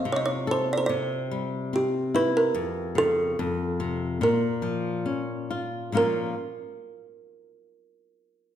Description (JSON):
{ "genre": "fado-style ballad", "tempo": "72 BPM", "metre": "2/4", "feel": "rubato", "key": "Bb harmonic minor", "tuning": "A4 = 439 Hz", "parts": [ { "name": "kalimba", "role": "melody", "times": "0.0-6.4 s", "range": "G4 to Eb5", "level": "-26 LUFS", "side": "right 2 dB", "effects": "none" }, { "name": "flamenco guitar", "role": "accompaniment", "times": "0.0-6.3 s", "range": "F2 to A4", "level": "-28 LUFS", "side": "left 4 dB", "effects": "none" } ], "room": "wet recital hall reverb, RT60 1.5 s", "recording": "none", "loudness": "-24 LUFS", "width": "side -10 dB against mid", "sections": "0.0-6.0 A section; 6.0-7.6 B section", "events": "none", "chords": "0.0 F (rootless); 0.9 C; 2.5 Bbm/F; 3.4 F; 4.2 Bbm" }